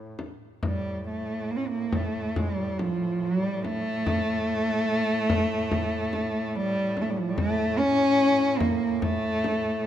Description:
caucasian folk, Caucasian lament; 66-74 BPM; 4/4; rubato; A phrygian dominant; A4 = 438 Hz
warm duduk; drone; 0.0-9.9 s; A2; -37 LUFS; equal
frame drum; percussion; 0.2-9.6 s; -31 LUFS; left 2 dB
dark cello; melody; 0.7-9.9 s; F3 to C#4; -24 LUFS; equal
moderate concert hall reverb, RT60 2.4 s; minimal, uncompressed stereo recording; -24 LUFS; side -11 dB against mid
0.6-9.9 A section

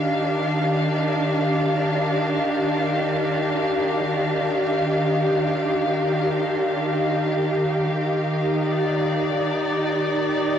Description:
ambient; free time; Eb major; A4 = 436 Hz
warm studio string section; solo; 0.0-10.6 s; Eb3 to F5; -20 LUFS; equal; cassette tape, analog delay
wet small room reverb, RT60 0.5 s; home recording on cassette; -20 LUFS; side -9 dB against mid
0.0-7.8 A section; 7.8-10.6 B section
0.0 Ebmaj9

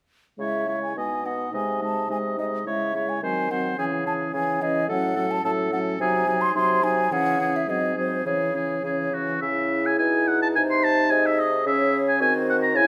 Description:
quick classical-period movement for wind quintet; 107 BPM; 2/4; rubato; C# minor; A4 = 440 Hz
mellow hollow concert flute; melody; 0.4-12.9 s; G#4 to B#5; -29 LUFS; equal
clear oboe; second line; 0.4-12.9 s; F#4 to B#5; -28 LUFS; equal
clear clarinet; accompaniment; 0.4-12.9 s; C4 to G#4; -35 LUFS; equal
dark French horn; accompaniment; 0.4-12.9 s; E3 to E4; -32 LUFS; equal
mellow bassoon; bass; 0.4-12.9 s; G#2 to Eb3; -31 LUFS; equal
moderate recital hall reverb, RT60 1.4 s; -23 LUFS; mono
0.4-9.4 A section; 9.4-12.9 B section
0.4 C#m; 1.0 B; 1.5 G#/B#; 2.7 C#m; 3.2 Cdim/Eb; 3.8 C#m; 4.9 F#m/A; 6.0 G#7/B#; 7.1 C#m; 7.7 G#7; 8.3 C#m; 10.0 B; 10.6 G#/B#; 11.7 C#m; 12.2 Cdim/Eb

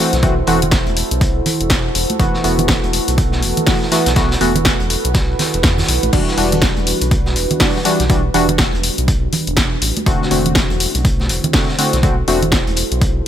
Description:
deep house; 122 BPM; 4/4; swing 60% on 16ths; E minor; A4 = 440 Hz
deep dark ambient pad; sustained chords; 0.0-13.3 s; G3 to C5; -23 LUFS; right 2 dB; chorus, built-in reverb, sidechain pumping
warm analog keys; stabs; 0.0-12.4 s; D3 to F#4; -18 LUFS; equal; chorus, sidechain pumping, low-pass filter, digital delay
round analog bass; bass; 0.1-13.2 s; E1 to E2; -20 LUFS; equal; sidechain pumping
punchy analog drum machine; drums; 0.1-13.1 s; crash cymbal, hi-hat, snare drum; -20 LUFS; left 2 dB; overdrive
vintage drum kit; drums; 0.1-13.2 s; hi-hat, snare drum; -25 LUFS; equal; high-pass filter on hats, high-pass filter on snare, high-pass filter on room
electronic kick drum; drums; 0.2-13.1 s; -17 LUFS; equal; overdrive
congas; percussion; 0.6-12.8 s; -24 LUFS; right 4 dB
small room ambience; -13 LUFS; side -10 dB against mid
0.0-13.3 A section
0.0 F#m7b5/E; 1.9 B7sus4/E; 6.1 Em9; 10.1 D7/E

